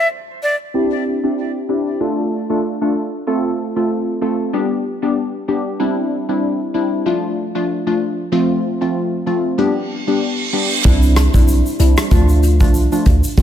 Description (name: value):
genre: dancehall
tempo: 95 BPM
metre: 4/4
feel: swing 56% on 16ths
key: C major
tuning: A4 = 440 Hz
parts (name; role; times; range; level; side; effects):
- breathy bright jazz flute; melody; 0.0-0.6 s; D5; -20 LUFS; left 1 dB; ping-pong delay
- glassy wavetable pluck; accompaniment; 0.7-13.4 s; F3 to A4; -17 LUFS; left 1 dB; chorus, low-pass filter
- reverse cymbal; sound effects; 9.9-10.8 s; none; -22 LUFS; right 5 dB; none
- warm 808-style bass; bass; 10.8-13.4 s; B1 to F2; -13 LUFS; equal; none
- soft brush drum kit; drums; 10.8-13.4 s; hi-hat, kick drum, rim click, shaker; -15 LUFS; equal; none
room: small room ambience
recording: none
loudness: -15 LUFS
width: side -10 dB against mid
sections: 0.7-10.8 A section; 10.8-13.4 B section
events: break 0.0-0.7; filter sweep on synth pluck 0.7-10.8; reverse cymbal 9.9-10.8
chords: 0.0 N.C.; 0.7 Cadd9; 2.0 Dm; 3.3 F; 4.5 G; 5.8 Cadd9; 7.1 Dm; 8.3 F; 9.6 G; 10.8 Cadd9; 12.1 Dm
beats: 0.11 | 0.74 1.38 2.01 2.64 | 3.27 3.90 4.53 5.17 | 5.80 6.43 7.06 7.69 | 8.32 8.95 9.59 10.22 | 10.85 11.48 12.11 12.74 | 13.38